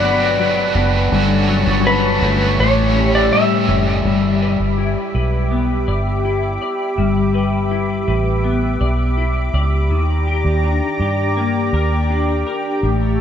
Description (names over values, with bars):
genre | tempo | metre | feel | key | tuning
dream pop | 82 BPM | 4/4 | straight | G lydian | A4 = 440 Hz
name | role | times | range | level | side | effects
electric slide guitar | melody | 0.0-3.8 s | B4 to E5 | -20 LUFS | left 1 dB | tape echo
overdriven electric guitar | accompaniment | 0.0-4.6 s | G2 to G4 | -22 LUFS | right 4 dB | harmonic tremolo, wide subtle chorus
lush unison pad | sustained chords | 0.0-13.2 s | G4 to D6 | -22 LUFS | right 1 dB | chorus
semi-hollow electric guitar | arpeggios | 0.0-13.2 s | G2 to D5 | -20 LUFS | left 5 dB | ensemble chorus, tape echo
vintage muted fingered electric bass | bass | 0.0-13.2 s | F#1 to G2 | -19 LUFS | right 1 dB | none
room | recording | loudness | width
moderate huge ambient reverb, RT60 5.7 s | none | -15 LUFS | side -9 dB against mid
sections
0.0-4.0 A section; 4.0-13.2 B section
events
none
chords
0.0 Gmaj7; 1.1 Dmaj7/G; 2.6 A7; 4.0 G6; 9.9 Ebmaj7